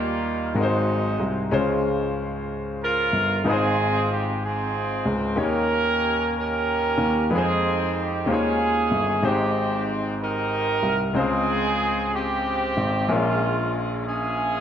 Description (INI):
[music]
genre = slow gospel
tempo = 62 BPM (dotted quarters)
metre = 6/8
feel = straight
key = Ab major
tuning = A4 = 441 Hz
[part]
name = clear horn section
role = melody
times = 0.0-14.6 s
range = Gb3 to Bb4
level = -24 LUFS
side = right 2 dB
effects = none
[part]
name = bright grand piano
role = accompaniment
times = 0.0-14.6 s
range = Ab2 to Db5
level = -27 LUFS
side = left 2 dB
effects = none
[part]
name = dark baby grand piano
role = bass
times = 0.0-14.6 s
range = G1 to F2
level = -26 LUFS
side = equal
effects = none
[sound]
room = moderate concert hall reverb, RT60 2.4 s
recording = none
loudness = -21 LUFS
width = side -9 dB against mid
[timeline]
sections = 0.0-14.6 A section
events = none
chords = 0.0 Eb; 0.6 Ab7; 1.5 Dbmaj7; 3.5 Ab6; 5.4 Eb7; 7.3 Fm7; 8.3 Eb9sus4; 9.2 Abmaj7; 11.2 Dbmaj7; 13.1 Bbm7